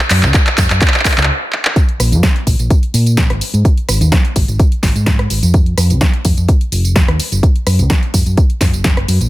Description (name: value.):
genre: filtered disco house.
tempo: 127 BPM.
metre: 4/4.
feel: straight.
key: Bb minor.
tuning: A4 = 440 Hz.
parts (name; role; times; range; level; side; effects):
house drum kit; drums; 0.0-9.3 s; handclaps, hi-hat, rim click, snare drum, tambourine; -16 LUFS; equal; sidechain pumping on hats, sidechain pumping on perc.
hollow-body short-scale fingered electric bass; bass; 0.1-9.3 s; F1 to Bb2; -13 LUFS; equal; tube saturation, sidechain pumping, low-pass filter.
electronic kick drum; drums; 0.3-8.9 s; none; -12 LUFS; equal; none.
room: digital ambience.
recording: none.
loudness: -10 LUFS.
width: side -17 dB against mid.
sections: 0.0-1.8 A section; 1.8-9.3 B section.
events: build-up 0.0-1.8; drum fill 0.0-1.3, 1.5; filter sweep on fingered electric bass 0.0-1.8; stop 1.3-1.8; drop 1.8-9.3.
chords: none.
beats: 0.34 0.81 1.29 | 1.76 2.23 2.71 3.18 | 3.65 4.12 4.59 5.07 | 5.54 6.01 6.49 6.96 | 7.43 7.90 8.38 8.85.